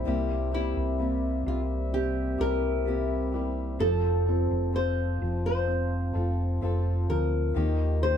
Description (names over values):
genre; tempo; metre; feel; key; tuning
pop ballad; 64 BPM; 4/4; straight; unclear; A4 = 440 Hz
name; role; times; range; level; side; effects
flamenco guitar; melody; 0.0-8.2 s; Fb4 to C5; -30 LUFS; left 1 dB; none
felt-muted upright piano; accompaniment; 0.0-8.2 s; C3 to F4; -34 LUFS; right 2 dB; none
mellow French horn section; sustained chords; 0.0-8.2 s; C3 to E5; -36 LUFS; left 1 dB; none
fingerpicked acoustic archtop guitar; arpeggios; 0.0-8.2 s; C3 to A4; -36 LUFS; left 5 dB; none
hollow-body short-scale fingered electric bass; bass; 0.0-8.2 s; F1 to Eb2; -28 LUFS; equal; none
room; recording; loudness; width
moderate studio reverb, RT60 0.7 s; band playing live in one room; -25 LUFS; side -8 dB against mid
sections
0.0-8.2 A section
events
none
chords
0.1 C7; 3.8 F; 7.6 Ebadd9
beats
| 0.05 0.99 1.93 2.86 | 3.80 4.74 5.68 6.61 | 7.55